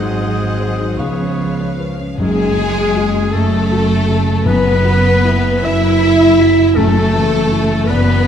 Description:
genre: cinematic, emotional film score for orchestra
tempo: 50-54 BPM (dotted quarters)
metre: 6/8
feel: rubato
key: F# minor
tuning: A4 = 440 Hz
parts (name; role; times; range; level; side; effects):
- rich studio violin section; melody; 0.0-8.3 s; G#3 to Eb5; -25 LUFS; left 5 dB; none
- clear clarinet; second line; 0.0-8.3 s; G#4 to E5; -24 LUFS; left 2 dB; none
- clear oboe; second line; 0.0-1.8 s; Cb5 to C5; -32 LUFS; equal; none
- concert flute; second line; 0.0-8.3 s; G#4 to Eb6; -24 LUFS; left 2 dB; none
- rich studio violin section; second line; 0.0-8.3 s; G#4 to Gb5; -23 LUFS; left 2 dB; none
- warm grand piano; accompaniment; 0.0-8.3 s; Db2 to Gb5; -22 LUFS; left 3 dB; none
- warm studio viola section; accompaniment; 0.0-8.3 s; G#3 to Ab4; -22 LUFS; right 3 dB; none
- dark French horn section; sustained chords; 0.0-8.3 s; F3 to E4; -18 LUFS; left 1 dB; none
- rich studio cello section; bass; 0.0-8.3 s; F#2 to Gb3; -20 LUFS; right 1 dB; none
- rich studio double bass section; bass; 0.0-8.3 s; F#1 to Db2; -20 LUFS; right 3 dB; none
- timpani; percussion; 2.2-7.8 s; F#2; -22 LUFS; left 1 dB; none
room: moderate scoring stage reverb, RT60 1.8 s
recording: none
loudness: -12 LUFS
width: side -8 dB against mid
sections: 0.0-2.2 A section; 2.2-8.3 B section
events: none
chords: 0.0 Ab7; 1.0 Db7; 2.2 F#madd9; 4.5 Esus2/F#; 6.8 Dadd9/F#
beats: 0.99 | 2.18 3.33 | 4.46 5.64 | 6.76 7.88

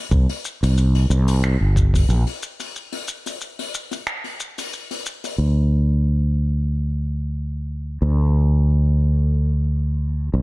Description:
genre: sunset chillout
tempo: 91 BPM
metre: 4/4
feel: swing 54% on 16ths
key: unclear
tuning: A4 = 440 Hz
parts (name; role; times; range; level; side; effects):
- fretless electric bass; bass; 0.1-10.4 s; G1 to D2; -17 LUFS; equal; none
- electronic kick drum; drums; 0.1-2.1 s; none; -18 LUFS; equal; none
- soft brush drum kit; drums; 0.1-5.4 s; finger snaps, hi-hat, shaker; -28 LUFS; left 4 dB; none
room: little or no reverb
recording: dark, warm production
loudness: -18 LUFS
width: side -21 dB against mid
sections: 0.0-5.4 A section; 5.4-10.4 B section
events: break 2.8-5.4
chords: none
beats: | 0.12 0.77 1.43 2.09 | 2.75 3.41 4.07 4.73 | 5.39 6.05 6.71 7.37 | 8.03 8.69 9.35 10.01

